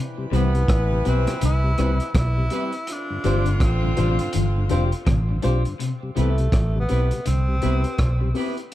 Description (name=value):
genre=roots reggae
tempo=82 BPM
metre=4/4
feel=swing 60% on 16ths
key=C major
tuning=A4 = 437 Hz
part: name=warm horn section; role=second line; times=0.0-5.4 s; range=D3 to B4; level=-32 LUFS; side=equal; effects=dub echo
part: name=electric guitar at the edge of break-up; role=arpeggios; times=0.0-7.7 s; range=G2 to E3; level=-29 LUFS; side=left 5 dB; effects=harmonic tremolo
part: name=mellow tonewheel organ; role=accompaniment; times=0.2-8.5 s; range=G2 to F4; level=-32 LUFS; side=left 3 dB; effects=slow rotary speaker
part: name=breathy tenor saxophone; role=melody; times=0.3-8.4 s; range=A3 to E4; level=-30 LUFS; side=equal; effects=dub echo
part: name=clean electric guitar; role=accompaniment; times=0.3-8.6 s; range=G3 to C5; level=-34 LUFS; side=right 3 dB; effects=dub echo
part: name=dark upright piano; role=stabs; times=0.3-8.6 s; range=C4 to C5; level=-30 LUFS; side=left 5 dB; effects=none
part: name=vintage muted fingered electric bass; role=bass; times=0.3-8.3 s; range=F1 to C2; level=-20 LUFS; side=equal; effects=none
part: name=crunchy breakbeat drum kit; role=drums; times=0.3-8.7 s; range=hi-hat, kick drum, rim click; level=-25 LUFS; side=equal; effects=none
room=little or no reverb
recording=dark, warm production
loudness=-19 LUFS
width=side -14 dB against mid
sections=0.0-5.8 A section; 5.8-8.7 B section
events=tenor saxophone solo 5.8-8.7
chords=0.0 Cmaj7; 2.9 G7sus4; 5.8 Cmaj7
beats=0.69 1.42 2.15 | 2.88 3.61 4.34 5.07 | 5.80 6.53 7.26 7.99 | 8.72